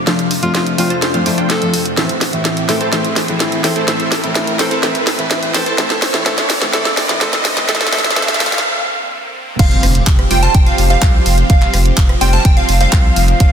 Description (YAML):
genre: EDM, festival progressive house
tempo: 126 BPM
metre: 4/4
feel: straight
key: F major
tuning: A4 = 440 Hz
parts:
  - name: supersaw pad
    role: sustained chords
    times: 0.0-13.5 s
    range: F2 to G4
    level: -24 LUFS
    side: equal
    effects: phaser, sidechain pumping
  - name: supersaw stab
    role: riff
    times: 0.0-13.5 s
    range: G3 to A5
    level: -21 LUFS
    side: right 1 dB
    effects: sidechain pumping, low-pass filter, dub echo
  - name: riser and impact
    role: sound effects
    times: 0.0-11.5 s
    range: none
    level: -23 LUFS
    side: right 1 dB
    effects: none
  - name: fingerpicked steel-string acoustic guitar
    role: accompaniment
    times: 0.1-8.5 s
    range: A2 to E4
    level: -21 LUFS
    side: left 2 dB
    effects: sidechain pumping, dub echo
  - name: house drum kit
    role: drums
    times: 0.1-13.5 s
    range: crash cymbal, handclaps, hi-hat, rim click, snare drum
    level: -17 LUFS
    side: equal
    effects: none
  - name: clear alto saxophone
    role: melody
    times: 0.4-8.6 s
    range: F4 to A4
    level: -23 LUFS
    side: equal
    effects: dub echo
  - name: plucky unison lead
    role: arpeggios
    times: 9.6-13.5 s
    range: F5 to A5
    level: -18 LUFS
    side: right 1 dB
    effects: phaser, sidechain pumping, dub echo
  - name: saturated sub bass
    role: bass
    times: 9.6-13.5 s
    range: F1 to C2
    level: -15 LUFS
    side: equal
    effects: tube saturation, sidechain pumping
  - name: electronic kick drum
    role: drums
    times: 9.6-13.5 s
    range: none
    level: -11 LUFS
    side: equal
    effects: none
room: moderate lush hall reverb, RT60 1.9 s, digital ambience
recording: dense, heavily limited modern master, high-pass filter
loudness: -12 LUFS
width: side -8 dB against mid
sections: 0.0-9.6 A section; 9.6-13.5 B section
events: build-up 0.0-9.6; drum fill 0.0-8.6; riser 0.0-8.6; filter sweep on supersaw synth 0.0-9.6; filter sweep 0.0-9.6; break 8.6-9.6; drop 9.6-13.5; impact 9.6-11.5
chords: 0.0 Dm7/F; 2.0 Am; 5.8 Bbadd9; 9.6 Fsus2